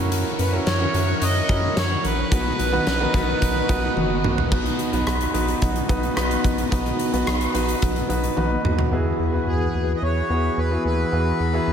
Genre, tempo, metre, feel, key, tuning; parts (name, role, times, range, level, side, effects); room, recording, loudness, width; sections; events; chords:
1980s-style pop; 109 BPM; 4/4; straight; B major; A4 = 439 Hz
clear concert grand piano; accompaniment; 0.0-11.7 s; B2 to B4; -25 LUFS; right 1 dB
heavy high-gain guitar; accompaniment; 0.0-5.0 s; F#2 to C#4; -35 LUFS; left 1 dB; distortion, analog chorus
phased string machine; sustained chords; 0.0-11.7 s; E3 to D#6; -29 LUFS; left 1 dB; ensemble chorus, phaser
rubbery square bass; bass; 0.0-11.7 s; F#1 to F#2; -25 LUFS; equal
huge arena drum kit; drums; 0.1-8.9 s; crash cymbal, hi-hat, kick drum, rim click, snare drum, toms; -24 LUFS; equal; gated reverb
accordion; melody; 0.4-3.9, 9.5-11.7 s; G#4 to D#5; -27 LUFS; right 1 dB; digital delay
mellow synth brass; stabs; 2.7-4.4 s; D#3 to F#4; -30 LUFS; right 2 dB; chorus
light reverb, studio ambience; -19 LUFS; side -8 dB against mid
0.0-4.5 A section; 4.5-8.9 B section; 8.9-11.7 C section
band accent 2.3-4.5; drum fill 4.0-4.5, 8.4-8.9
0.0 F#7; 2.3 B; 8.9 Eadd9